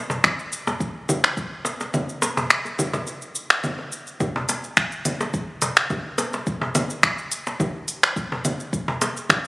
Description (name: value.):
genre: downtempo.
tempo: 106 BPM.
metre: 4/4.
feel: swing 53% on 16ths.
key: none.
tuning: none.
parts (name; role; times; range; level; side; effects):
afro-pop drum kit; drums; 0.1-9.5 s; congas, finger snaps, hi-hat, shaker; -21 LUFS; equal; studio reverb.
cajon; percussion; 0.1-9.1 s; none; -27 LUFS; equal; none.
electronic kick drum; drums; 0.2-9.4 s; none; -29 LUFS; equal; studio reverb.
room: moderate lush hall reverb, RT60 2.3 s.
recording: recorded on a phone in the room, club reverb.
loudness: -21 LUFS.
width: side -22 dB against mid.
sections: 0.0-4.2 A section; 4.2-9.5 B section.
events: kick drops out 1.9-4.2.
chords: none.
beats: 0.24 0.81 1.37 | 1.94 2.50 3.07 3.64 | 4.20 4.77 5.33 5.90 | 6.47 7.03 7.60 8.16 | 8.73 9.30.